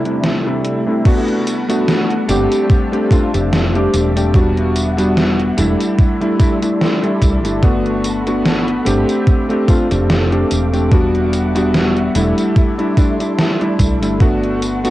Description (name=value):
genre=vaporwave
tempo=73 BPM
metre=4/4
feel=swing 55% on 16ths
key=G major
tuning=A4 = 440 Hz
part: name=warm electric grand piano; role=accompaniment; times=0.0-14.9 s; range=C3 to G4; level=-16 LUFS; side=equal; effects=lush chorus, cassette tape, analog delay
part: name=soft string machine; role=sustained chords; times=0.0-14.9 s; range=C2 to D6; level=-25 LUFS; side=right 1 dB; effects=phaser, ensemble chorus, cassette tape
part: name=gated 80s digital drum machine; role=drums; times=0.1-14.9 s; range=crash cymbal, hi-hat, snare drum, tambourine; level=-20 LUFS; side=equal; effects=gated reverb, gated reverb snare, overdrive, cassette tape
part: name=electronic kick drum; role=drums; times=1.1-14.4 s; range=none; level=-13 LUFS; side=equal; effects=overdrive, cassette tape
part: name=woody fretless electric bass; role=bass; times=2.3-14.9 s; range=E1 to C2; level=-19 LUFS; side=equal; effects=lush chorus
room=light reverb, digital ambience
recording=home recording on cassette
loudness=-13 LUFS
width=side -15 dB against mid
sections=0.0-1.1 A section; 1.1-14.9 B section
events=filter sweep 0.0-1.1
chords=0.0 C69; 1.1 Gmaj9; 2.7 F69; 4.3 Em9; 6.0 C69; 7.6 Gmaj9; 9.3 F69; 10.9 Em9; 12.6 C69; 14.2 Gmaj9